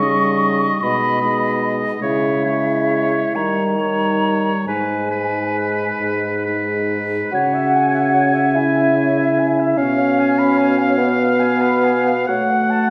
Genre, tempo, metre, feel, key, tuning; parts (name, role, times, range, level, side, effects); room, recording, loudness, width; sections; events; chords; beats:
classical, slow romantic movement for wind quintet; 44-51 BPM (dotted quarters); 6/8; rubato; G# minor, C# minor from 7.3 s; A4 = 441 Hz
hollow concert flute; melody; 0.0-12.9 s; B4 to C#6; -25 LUFS; equal
bright oboe; second line; 0.0-12.9 s; B4 to G#5; -25 LUFS; equal
mellow French horn; accompaniment; 0.0-12.9 s; B2 to A3; -24 LUFS; equal
mellow clarinet; accompaniment; 0.0-12.9 s; D#4 to B5; -29 LUFS; equal
mellow bassoon; bass; 0.0-12.9 s; G#2 to F#4; -22 LUFS; equal
wet recital hall reverb, RT60 1.6 s; recorded in a church or concert hall; -18 LUFS; mono
0.0-7.3 A section; 7.3-12.9 B section
0.0 D#7/C#; 0.8 G#m/B; 2.0 C#m; 3.4 D#7; 4.7 G#m; 7.3 C#m; 9.8 C#7/B; 12.3 F#m/A
0.81 | 2.02 3.35 | 4.67 6.01 | 7.33 8.56 | 9.78 10.99 | 12.29